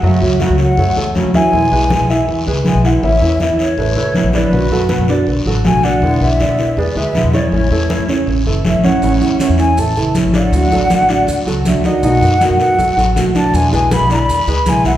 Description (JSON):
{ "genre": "latin, Cuban son and guajira", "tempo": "160 BPM", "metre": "4/4", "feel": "straight", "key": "A major", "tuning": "A4 = 436 Hz", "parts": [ { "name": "breathy concert flute", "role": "melody", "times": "0.0-14.9 s", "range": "B4 to B5", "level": "-18 LUFS", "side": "left 1 dB", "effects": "none" }, { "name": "fingerpicked acoustic archtop guitar", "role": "accompaniment", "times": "0.0-15.0 s", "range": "B2 to F#4", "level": "-19 LUFS", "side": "left 1 dB", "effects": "none" }, { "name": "warm concert grand piano", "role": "arpeggios", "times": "0.0-15.0 s", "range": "C#3 to F#5", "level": "-18 LUFS", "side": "right 3 dB", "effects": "none" }, { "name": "upright bass", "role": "bass", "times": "0.0-15.0 s", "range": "F#1 to F#2", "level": "-17 LUFS", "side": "equal", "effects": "none" }, { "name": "congas", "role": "percussion", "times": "0.0-14.8 s", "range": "none", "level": "-20 LUFS", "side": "equal", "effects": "none" }, { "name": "guiro", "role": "percussion", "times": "0.0-15.0 s", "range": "none", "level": "-28 LUFS", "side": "left 3 dB", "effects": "none" }, { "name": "maracas", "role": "percussion", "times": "9.0-15.0 s", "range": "none", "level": "-33 LUFS", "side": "right 2 dB", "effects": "none" } ], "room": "wet large studio reverb, RT60 1.4 s", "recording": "heard from further back in the room", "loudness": "-11 LUFS", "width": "side -12 dB against mid", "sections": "0.0-15.0 A section", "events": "none", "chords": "0.0 F#m; 1.5 E; 3.0 Aadd9; 4.5 Bm7; 6.0 E7; 7.5 A; 10.5 D; 12.0 B7; 13.5 E7" }